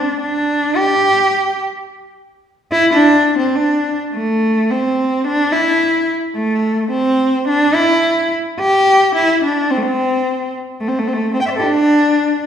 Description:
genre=chinese traditional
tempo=107 BPM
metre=2/4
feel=rubato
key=D shang mode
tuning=A4 = 440 Hz
part: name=rich cello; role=solo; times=0.0-12.5 s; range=A3 to G5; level=-13 LUFS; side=equal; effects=none
room=wet recital hall reverb, RT60 1.5 s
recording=recorded in a church or concert hall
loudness=-13 LUFS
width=side -8 dB against mid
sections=0.0-4.1 A section; 4.1-12.5 B section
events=none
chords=none

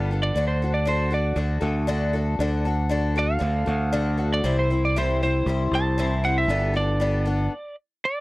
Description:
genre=folk rock and heartland rock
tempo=117 BPM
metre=4/4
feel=straight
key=D major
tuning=A4 = 440 Hz
part: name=electric slide guitar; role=melody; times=0.0-8.2 s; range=C5 to A5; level=-26 LUFS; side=right 2 dB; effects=none
part: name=picked twelve-string acoustic guitar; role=accompaniment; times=0.0-7.5 s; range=C3 to C5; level=-26 LUFS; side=left 3 dB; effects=none
part: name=fingered electric bass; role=bass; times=0.0-7.5 s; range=G1 to D2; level=-23 LUFS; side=right 1 dB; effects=none
room=little or no reverb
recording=dry, close 1970s-style studio recording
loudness=-21 LUFS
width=side -20 dB against mid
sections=0.0-8.2 A section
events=electric slide guitar solo 0.0-8.2; stop 7.5-8.2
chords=0.3 D; 4.4 C; 6.5 Gadd9; 7.5 N.C.

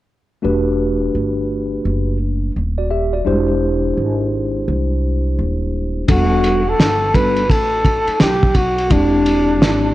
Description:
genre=hip hop, jazz-hop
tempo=85 BPM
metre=4/4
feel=swing 64% on 16ths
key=E minor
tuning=A4 = 440 Hz
part: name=mellow tine electric piano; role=accompaniment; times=0.4-9.9 s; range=G3 to E5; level=-19 LUFS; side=equal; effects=medium stereo tremolo
part: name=upright bass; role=bass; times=0.4-9.9 s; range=D#1 to B#1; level=-20 LUFS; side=equal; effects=none
part: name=breathy flugelhorn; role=melody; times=6.1-9.9 s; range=D4 to B4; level=-17 LUFS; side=equal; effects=none
part: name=cloth-damped thuddy drum kit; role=drums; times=6.1-9.8 s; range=hi-hat, kick drum, ride cymbal, snare drum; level=-17 LUFS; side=equal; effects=none
room=moderate plate reverb, RT60 2.1 s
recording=worn, warbling old tape, cassette tape, warbly pitch drift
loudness=-14 LUFS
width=side -16 dB against mid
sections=0.4-6.1 A section; 6.1-9.9 B section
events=none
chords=0.4 Em11; 3.3 E7alt; 6.1 Em11; 8.9 E7alt

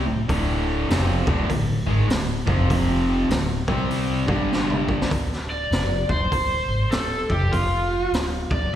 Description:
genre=blues rock power trio and southern rock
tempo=99 BPM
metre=4/4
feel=swing 62% on 8ths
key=unclear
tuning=A4 = 440 Hz
part: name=distorted electric guitar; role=riff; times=0.0-5.1 s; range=D2 to C4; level=-23 LUFS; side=equal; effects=distortion
part: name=upright bass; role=bass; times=0.0-8.7 s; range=D1 to C2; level=-25 LUFS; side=equal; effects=none
part: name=raw garage drum kit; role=drums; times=0.3-8.6 s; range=hi-hat, kick drum, snare drum, toms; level=-26 LUFS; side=equal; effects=none
part: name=overdriven slide guitar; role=melody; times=5.5-8.7 s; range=F4 to D5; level=-24 LUFS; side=equal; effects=slapback echo
room=light reverb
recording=live gig heard through the venue's PA, recital hall reverb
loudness=-20 LUFS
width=side -11 dB against mid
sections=0.0-5.1 A section; 5.1-8.8 B section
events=drum fill 4.5-5.1; electric slide guitar solo 5.1-8.8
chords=0.0 D5; 2.4 F5; 3.3 D5; 3.6 C5; 4.2 G5; 5.1 Dm7; 7.2 Fsus2; 8.1 N.C.

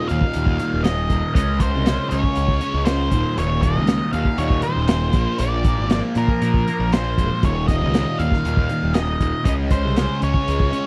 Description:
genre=psychedelic rock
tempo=118 BPM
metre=4/4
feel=straight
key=unclear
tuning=A4 = 439 Hz
part: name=octave-fuzz lead guitar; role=melody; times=0.0-10.9 s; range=Bb4 to F5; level=-28 LUFS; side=equal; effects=distortion, slapback echo
part: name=fuzz guitar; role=riff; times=0.0-10.9 s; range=Eb2 to Db4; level=-26 LUFS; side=equal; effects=distortion, phaser
part: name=tanpura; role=drone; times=0.0-5.9 s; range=Eb2 to Eb3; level=-45 LUFS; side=equal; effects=none
part: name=fuzz picked electric bass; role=bass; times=0.1-10.7 s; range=Eb1 to Bb2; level=-25 LUFS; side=equal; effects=overdrive
part: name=crunchy breakbeat drum kit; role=drums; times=0.1-10.8 s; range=hi-hat, kick drum, snare drum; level=-23 LUFS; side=equal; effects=none
room=little or no reverb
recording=dry, close 1970s-style studio recording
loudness=-20 LUFS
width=mono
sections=0.0-10.9 A section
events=none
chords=0.0 Eb5; 1.4 Db5; 3.1 Eb5; 5.2 Bb; 7.4 Eb5; 9.5 Db5

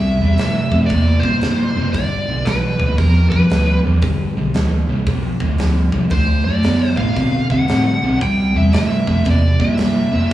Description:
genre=blues rock power trio and southern rock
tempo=115 BPM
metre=4/4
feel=swing 64% on 8ths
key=G mixolydian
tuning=A4 = 440 Hz
part: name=dark smooth lead guitar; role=melody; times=0.0-10.3 s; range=Bb4 to G5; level=-23 LUFS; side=equal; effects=overdrive, slapback echo, analog delay
part: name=fuzz guitar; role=riff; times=0.0-10.3 s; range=G2 to C4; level=-18 LUFS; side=equal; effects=distortion
part: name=vintage muted fingered electric bass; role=bass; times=0.0-10.3 s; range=F1 to C3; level=-18 LUFS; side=equal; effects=none
part: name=huge arena drum kit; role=drums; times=0.4-10.3 s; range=hi-hat, kick drum, snare drum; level=-22 LUFS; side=equal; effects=none
room=small room ambience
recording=live gig heard through the venue's PA, club reverb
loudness=-14 LUFS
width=side -14 dB against mid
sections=0.0-10.3 A section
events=none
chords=0.0 C7; 1.9 G7; 6.1 D7; 8.2 C7

